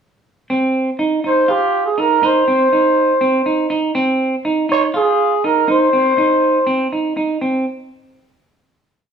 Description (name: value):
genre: progressive instrumental, progressive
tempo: 243 BPM (eighths)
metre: 7/8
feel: straight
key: C minor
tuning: A4 = 441 Hz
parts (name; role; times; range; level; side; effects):
- semi-hollow electric guitar; arpeggios; 0.5-7.6 s; C4 to F4; -17 LUFS; right 2 dB; none
- growling trumpet; melody; 1.3-6.9 s; G4 to Db5; -14 LUFS; right 1 dB; none
room: moderate stone room reverb, RT60 1.2 s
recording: band playing live in one room, small room ambience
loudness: -14 LUFS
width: side -7 dB against mid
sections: 0.5-7.4 A section; 7.4-9.1 final note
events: none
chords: 0.5 Cm; 7.4 N.C.